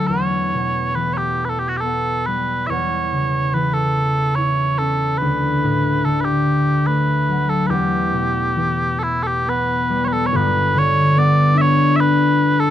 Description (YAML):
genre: celtic folk, Celtic slow air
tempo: 70 BPM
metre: 3/4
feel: uneven beats, rubato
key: E dorian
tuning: A4 = 440 Hz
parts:
  - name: mellow small bagpipes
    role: melody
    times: 0.0-12.7 s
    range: E4 to E5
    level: -19 LUFS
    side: right 1 dB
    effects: none
  - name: concert harp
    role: accompaniment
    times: 0.0-12.7 s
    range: G1 to E4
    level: -18 LUFS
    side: left 1 dB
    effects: none
room: small room ambience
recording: dry, close 1970s-style studio recording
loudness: -16 LUFS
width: side -11 dB against mid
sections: 0.0-10.3 A section; 10.3-12.7 B section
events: none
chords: 0.1 Em; 2.7 Aadd9/E; 5.2 D; 7.7 Em; 10.3 G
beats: | 0.10 0.97 1.84 | 2.70 3.54 4.38 | 5.22 6.05 6.88 | 7.71 8.56 9.45 | 10.32 11.15 11.96